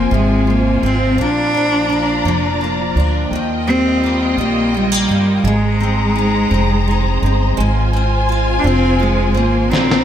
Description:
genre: six-eight pop ballad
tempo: 56 BPM (dotted quarters)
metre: 6/8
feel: straight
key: Eb major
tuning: A4 = 440 Hz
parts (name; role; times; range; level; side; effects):
- rich cello; melody; 0.0-10.0 s; G3 to D4; -17 LUFS; equal; ping-pong delay
- picked steel-string acoustic guitar; accompaniment; 0.0-10.0 s; F2 to F4; -20 LUFS; equal; double-tracked left and right
- warm studio string section; sustained chords; 0.0-10.0 s; D4 to Bb5; -22 LUFS; left 1 dB; none
- upright bass; bass; 0.0-10.0 s; F1 to Eb2; -18 LUFS; equal; none
- electronic snare drum; drums; 9.7-10.0 s; none; -14 LUFS; left 1 dB; gated reverb
room: moderate lush hall reverb, RT60 1.9 s, small room reverb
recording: bright 1980s-style digital production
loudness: -13 LUFS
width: side -10 dB against mid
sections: 0.0-3.3 A section; 3.3-10.0 B section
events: drum fill 9.7-10.0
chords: 0.0 Fm; 1.2 Bb; 3.3 Ebadd9; 5.5 Abadd9; 7.6 Fm/Ab

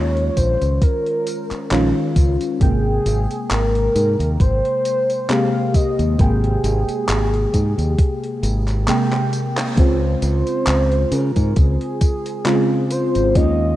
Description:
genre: vaporwave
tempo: 67 BPM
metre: 4/4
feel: swing 55% on 16ths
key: Ab major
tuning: A4 = 439 Hz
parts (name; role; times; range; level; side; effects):
- warm velvety synth lead; melody; 0.0-13.8 s; Ab4 to F5; -23 LUFS; equal; chorus, tape echo
- mellow FM electric piano; accompaniment; 0.0-13.8 s; C3 to G5; -21 LUFS; equal; wide subtle chorus, tape echo
- modern bright fingered electric bass; bass; 0.0-13.7 s; Ab1 to Db3; -19 LUFS; equal; none
- gated 80s digital drum machine; drums; 0.2-13.6 s; handclaps, hi-hat, tambourine; -28 LUFS; equal; gated reverb, overdrive, vintage 12-bit sampler grit
- electronic kick drum; drums; 0.4-13.6 s; none; -16 LUFS; equal; overdrive, vintage 12-bit sampler grit
room: light reverb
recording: rough home demo mix, cassette tape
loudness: -16 LUFS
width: side -14 dB against mid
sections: 0.0-9.8 A section; 9.8-13.8 B section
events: drum fill 9.1-9.8; band accent 9.6-10.0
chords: 0.0 Eb9sus4; 2.6 Abmaj9; 9.8 Dbmaj7

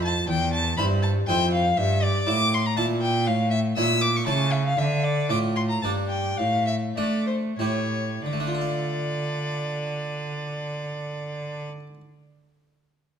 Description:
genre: classical, baroque-style sonata movement with continuo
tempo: 87-122 BPM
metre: 3/4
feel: straight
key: D minor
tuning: A4 = 440 Hz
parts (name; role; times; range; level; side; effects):
- rich violin; melody; 0.0-11.7 s; C5 to E6; -27 LUFS; left 2 dB; none
- harpsichord; accompaniment; 0.0-12.0 s; E2 to F5; -28 LUFS; equal; none
- clear cello; bass; 0.0-11.7 s; E2 to A3; -26 LUFS; right 2 dB; none
room: moderate recital hall reverb, RT60 1.4 s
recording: none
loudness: -22 LUFS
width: side -8 dB against mid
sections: 0.0-8.3 A section; 8.3-12.4 B section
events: slowing down 4.0-8.3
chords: 0.3 C/E; 1.8 Edim/G; 3.3 A; 4.8 Dm; 5.8 Gm; 6.4 D5/A; 7.6 A7; 8.3 Dm

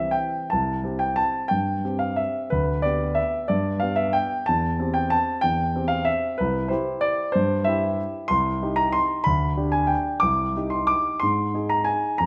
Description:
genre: classical, piano waltz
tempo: 151-198 BPM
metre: 3/4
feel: rubato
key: C major, C minor from 8.3 s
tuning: A4 = 441 Hz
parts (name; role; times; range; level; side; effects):
- warm grand piano; solo; 0.0-12.3 s; C2 to D6; -24 LUFS; equal; none
room: wet recital hall reverb, RT60 1.4 s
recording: none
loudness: -24 LUFS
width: mono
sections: 0.5-12.3 A section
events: none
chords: 0.0 C; 2.5 G/D; 4.5 C/E; 6.4 C; 8.3 Cm; 9.3 G/D; 10.2 Cm; 11.2 Ab

